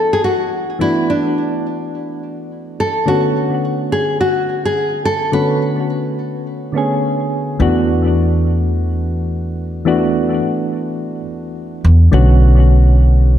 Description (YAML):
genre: sunset chillout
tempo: 106 BPM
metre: 4/4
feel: swing 58% on 16ths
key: unclear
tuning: A4 = 441 Hz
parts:
  - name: nylon-string guitar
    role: melody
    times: 0.0-6.4 s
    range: D4 to B4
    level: -17 LUFS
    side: equal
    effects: digital delay
  - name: soft electric-piano-like synth keys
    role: accompaniment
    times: 0.0-13.4 s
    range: D3 to G#4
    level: -18 LUFS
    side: left 1 dB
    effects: chorus, auto-pan, digital delay
  - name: upright bass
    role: bass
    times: 7.6-13.4 s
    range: B1 to A2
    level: -12 LUFS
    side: equal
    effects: none
room: moderate lush hall reverb, RT60 1.7 s, studio ambience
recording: dark, warm production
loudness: -13 LUFS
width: side -11 dB against mid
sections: 0.0-7.6 A section; 7.6-13.4 B section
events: none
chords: 0.0 E9sus4; 3.1 Bm9; 7.6 E9sus4; 12.1 Bm9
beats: 0.24 | 0.81 1.37 1.94 2.50 | 3.07 3.64 4.20 4.77 | 5.33 5.90 6.47 7.03 | 7.60 8.16 8.73 9.30 | 9.86 10.43 10.99 11.56 | 12.13 12.69 13.26